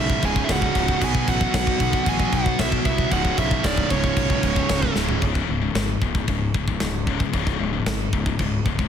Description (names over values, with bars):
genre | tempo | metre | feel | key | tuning
heavy metal | 114 BPM | 4/4 | straight | C# minor | A4 = 440 Hz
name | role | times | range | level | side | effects
high-gain lead guitar | melody | 0.0-4.9 s | C#5 to G#5 | -27 LUFS | right 1 dB | distortion
high-gain lead guitar | second line | 0.0-4.9 s | C#4 to G#4 | -32 LUFS | right 7 dB | none
heavy high-gain guitar | riff | 0.0-5.2 s | C#2 to B3 | -26 LUFS | right 13 dB | distortion
scooped high-gain guitar | riff | 0.0-8.9 s | C#2 to B3 | -26 LUFS | left 9 dB | distortion
fuzz fingered electric bass | bass | 0.0-8.9 s | C#1 to B#1 | -26 LUFS | equal | overdrive
tight metal drum kit | drums | 0.1-8.9 s | crash cymbal, kick drum, snare drum, toms | -24 LUFS | equal | none
room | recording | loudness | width
small room ambience | dense, heavily limited modern master | -19 LUFS | side -8 dB against mid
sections
0.0-5.2 A section; 5.2-8.9 B section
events
drum fill 5.0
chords
0.0 C#5; 1.0 B5; 3.1 C#5